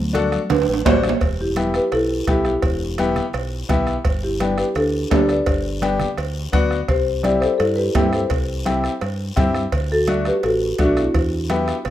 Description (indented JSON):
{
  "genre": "latin, cumbia",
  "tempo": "169 BPM",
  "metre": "4/4",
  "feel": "straight",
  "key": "E minor",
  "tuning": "A4 = 440 Hz",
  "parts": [
    { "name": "marimba with medium mallets", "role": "melody", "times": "0.0-11.9 s", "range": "F#3 to D5", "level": "-21 LUFS", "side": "left 1 dB", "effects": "plate reverb" },
    { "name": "fingered electric bass", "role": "bass", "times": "0.0-11.9 s", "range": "E1 to G2", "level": "-26 LUFS", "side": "equal", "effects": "none" },
    { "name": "bright upright piano", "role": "accompaniment", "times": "0.1-11.7 s", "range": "A3 to C5", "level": "-23 LUFS", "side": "left 4 dB", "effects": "plate reverb" },
    { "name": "bombo", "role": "percussion", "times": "0.1-11.9 s", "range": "none", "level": "-24 LUFS", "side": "equal", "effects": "none" },
    { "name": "congas", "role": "percussion", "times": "0.1-11.9 s", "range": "none", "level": "-27 LUFS", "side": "equal", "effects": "none" },
    { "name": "guiro", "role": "percussion", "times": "0.1-11.9 s", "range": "none", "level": "-38 LUFS", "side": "left 5 dB", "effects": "none" },
    { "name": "cowbell and timbales", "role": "percussion", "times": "0.2-11.9 s", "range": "none", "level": "-25 LUFS", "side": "right 8 dB", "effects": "none" }
  ],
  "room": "wet studio reverb, RT60 0.5 s",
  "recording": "rough home demo mix",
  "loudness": "-17 LUFS",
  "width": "side -12 dB against mid",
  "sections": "0.0-1.2 A section; 1.2-11.9 B section",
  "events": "drum fill 0.5-1.2",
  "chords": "0.0 D; 1.2 Em; 4.1 G; 6.9 C; 9.7 D; 11.1 Em",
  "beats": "0.15 0.51 0.86 | 1.22 1.57 1.92 2.28 | 2.63 2.99 3.34 3.70 | 4.05 4.41 4.76 5.12 | 5.47 5.83 6.18 6.54 | 6.89 7.24 7.60 7.95 | 8.31 8.66 9.02 9.37 | 9.73 10.08 10.44 10.79 | 11.14 11.50 11.85"
}